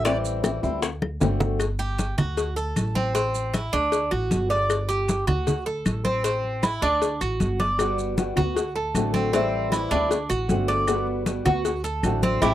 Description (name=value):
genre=latin, Cuban son and guajira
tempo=155 BPM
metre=4/4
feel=straight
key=unclear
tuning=A4 = 440 Hz
part: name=fingerpicked old ladder-braced acoustic guitar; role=accompaniment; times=0.0-1.6, 7.8-12.5 s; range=D3 to F#4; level=-26 LUFS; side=left 2 dB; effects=none
part: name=Cuban tres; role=arpeggios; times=0.0-12.5 s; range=C4 to D5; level=-25 LUFS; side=right 2 dB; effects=none
part: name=upright bass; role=bass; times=0.0-12.5 s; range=G1 to D2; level=-28 LUFS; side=equal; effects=none
part: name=bongos and cowbell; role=percussion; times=0.1-12.5 s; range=none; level=-29 LUFS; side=left 5 dB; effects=none
part: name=congas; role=percussion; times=0.1-12.5 s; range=none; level=-26 LUFS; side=equal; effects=none
part: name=maracas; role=percussion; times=0.1-12.5 s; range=none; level=-38 LUFS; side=right 9 dB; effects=none
part: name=claves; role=percussion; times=0.4-12.5 s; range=none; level=-36 LUFS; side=left 2 dB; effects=none
room=little or no reverb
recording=dry, close 1970s-style studio recording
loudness=-22 LUFS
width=side -13 dB against mid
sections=0.0-1.6 A section; 1.6-12.5 B section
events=Cuban tres solo 0.0-1.6; drum fill 1.0-1.6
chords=0.1 Am7; 0.8 D7; 1.6 G5; 2.4 D7; 3.1 Am; 3.9 D; 4.7 G5; 5.5 D7; 6.2 Am; 7.0 D; 7.8 Gmaj7; 8.6 D7; 9.3 Am7; 10.1 D7; 10.9 Gmaj7; 11.7 D7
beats=| 0.05 0.44 0.83 1.21 | 1.60 1.99 2.37 2.76 | 3.15 3.54 3.92 4.31 | 4.70 5.08 5.47 5.86 | 6.24 6.63 7.02 7.40 | 7.79 8.18 8.56 8.95 | 9.34 9.72 10.11 10.49 | 10.88 11.27 11.65 12.04 | 12.42